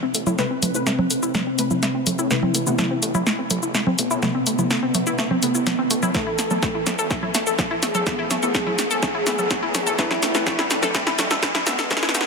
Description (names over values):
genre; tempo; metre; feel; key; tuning
melodic techno; 125 BPM; 4/4; straight; A harmonic minor; A4 = 441 Hz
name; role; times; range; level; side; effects
analog pluck; arpeggios; 0.0-12.2 s; A3 to A4; -26 LUFS; left 2 dB; chorus, sidechain pumping, ping-pong delay
synth brass stab; stabs; 0.0-12.2 s; C3 to B4; -29 LUFS; left 2 dB; chorus, sidechain pumping, ping-pong delay
riser; sound effects; 0.1-12.3 s; none; -32 LUFS; equal; none
wide unison lead; melody; 0.1-12.3 s; B3 to A4; -26 LUFS; equal; sidechain pumping, ping-pong delay
swelling detuned saw bass; bass; 0.1-12.2 s; E1 to A2; -35 LUFS; equal; none
punchy analog drum machine; drums; 0.1-12.3 s; congas, hi-hat, shaker, snare drum; -22 LUFS; right 1 dB; none
electronic kick drum; drums; 6.1-12.0 s; none; -29 LUFS; equal; none
room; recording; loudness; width
moderate huge ambient reverb, RT60 4.1 s; dense, heavily limited modern master, high-pass filter; -19 LUFS; side -4 dB against mid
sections
0.0-12.3 A section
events
build-up 0.0-12.3; drum fill 0.0-12.3; filter sweep on synth arpeggio sound 0.0-12.3; filter sweep on analog synth lead 0.0-12.3; filter sweep on synth stab 0.0-12.3; riser 0.1-12.3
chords
0.0 Amadd9; 6.1 Esus4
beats
| 0.39 0.87 1.35 1.83 | 2.31 2.79 3.27 3.75 | 4.23 4.71 5.19 5.67 | 6.15 6.63 7.11 7.59 | 8.07 8.55 9.03 9.51 | 9.99 10.47 10.95 11.43 | 11.91